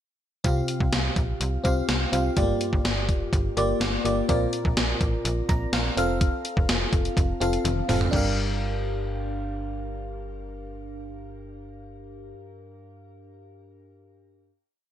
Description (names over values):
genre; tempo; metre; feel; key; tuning
1980s-style pop; 125 BPM; 4/4; straight; G minor; A4 = 440 Hz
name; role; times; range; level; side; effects
FM electric piano; accompaniment; 0.4-14.5 s; G2 to Bb5; -28 LUFS; equal; chorus, phaser, shimmer reverb
slap-like FM bass; bass; 0.4-12.3 s; F1 to C2; -29 LUFS; equal; none
gated 80s digital drum machine; drums; 0.4-8.2 s; crash cymbal, hi-hat, kick drum, snare drum, toms; -26 LUFS; equal; gated reverb, gated reverb snare
room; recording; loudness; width
light reverb; none; -22 LUFS; side -10 dB against mid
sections
0.5-8.1 verse; 8.1-12.0 final chord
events
drum fill 7.7-8.1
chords
0.5 Csus4; 2.4 Gm7; 4.3 Bbadd9; 6.0 F; 8.1 Gm7